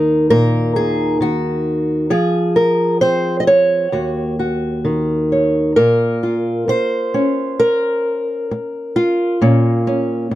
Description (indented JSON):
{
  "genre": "folk, solo fingerstyle acoustic guitar",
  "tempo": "66 BPM",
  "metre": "4/4",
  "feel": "straight",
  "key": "unclear",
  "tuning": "A4 = 440 Hz",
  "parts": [
    { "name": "fingerpicked old ladder-braced acoustic guitar", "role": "solo", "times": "0.0-10.4 s", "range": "Eb2 to Eb5", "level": "-14 LUFS", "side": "equal", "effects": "none" }
  ],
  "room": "little or no reverb",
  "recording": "dry, close 1970s-style studio recording",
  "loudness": "-14 LUFS",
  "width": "side -14 dB against mid",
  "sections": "0.0-5.8 A section; 5.8-10.4 B section",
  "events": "none",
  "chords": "0.0 Ebm; 2.1 Fm; 3.9 Ebm7; 5.8 Bbmadd9",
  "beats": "0.30 1.20 | 2.10 3.01 3.92 4.84 | 5.76 6.68 7.59 8.50 | 9.41 10.31"
}